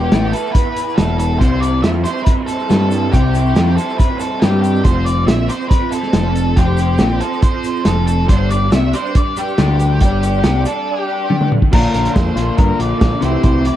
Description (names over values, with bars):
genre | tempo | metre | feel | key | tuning
indie rock | 140 BPM | 4/4 | straight | C major | A4 = 435 Hz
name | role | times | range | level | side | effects
octave-fuzz lead guitar | melody | 0.0-13.8 s | G4 to E5 | -21 LUFS | left 2 dB | distortion
clean electric guitar | riff | 0.0-13.8 s | E2 to G4 | -20 LUFS | left 6 dB | spring reverb
raw garage guitar | riff | 0.0-13.8 s | Bb2 to D5 | -22 LUFS | right 7 dB | overdrive, ensemble chorus
growling picked electric bass | bass | 0.0-13.7 s | E1 to G2 | -18 LUFS | equal | overdrive
vintage drum kit | drums | 0.1-13.8 s | crash cymbal, hi-hat, kick drum, snare drum, toms | -16 LUFS | equal | none
egg shaker | percussion | 0.1-10.8 s | none | -40 LUFS | left 8 dB | none
room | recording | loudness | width
light reverb | dark, warm production | -13 LUFS | side -12 dB against mid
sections
0.0-11.7 A section; 11.7-13.8 B section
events
drum fill 11.3-11.7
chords
0.0 E5; 1.4 C; 4.9 F5; 8.3 G5; 11.7 Bb; 13.2 Am7/C